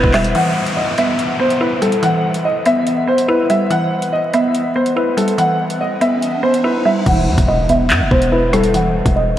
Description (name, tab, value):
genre	hip hop, drill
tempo	143 BPM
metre	4/4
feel	half-time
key	E harmonic minor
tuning	A4 = 442 Hz
part	dark grand piano	melody	0.0-9.3 s	A4 to F#5	-16 LUFS	equal	wide subtle chorus, low-pass filter, diffuse ambient delay
part	mallet-like synth pluck	accompaniment	0.0-9.4 s	E3 to E4	-18 LUFS	equal	chorus, low-pass filter
part	hard-hitting 808-style bass	bass	0.0-0.3, 7.1-9.4 s	D#1 to G2	-18 LUFS	equal	none
part	drill drum kit	drums	0.0-9.2 s	crash cymbal, handclaps, hi-hat, kick drum, rim click	-21 LUFS	equal	vintage 12-bit sampler grit
part	downlifter, riser and impact	sound effects	0.3-8.7 s	none	-27 LUFS	equal	none
room	wet cathedral reverb, RT60 6.5 s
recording	dreamy mix soaked in reverb, vinyl crackle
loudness	-13 LUFS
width	side -12 dB against mid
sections	0.3-7.1 A section; 7.1-9.4 B section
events	riser 3.9-7.1; silent gap 6.6-7.1; impact 7.1-8.7; filter sweep 7.1-9.4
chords	0.3 Emadd9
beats	| 0.35 0.77 1.19 1.61 | 2.03 2.45 2.87 3.29 | 3.71 4.13 4.55 4.96 | 5.38 5.80 6.22 6.64 | 7.06 7.48 7.90 8.32 | 8.74 9.16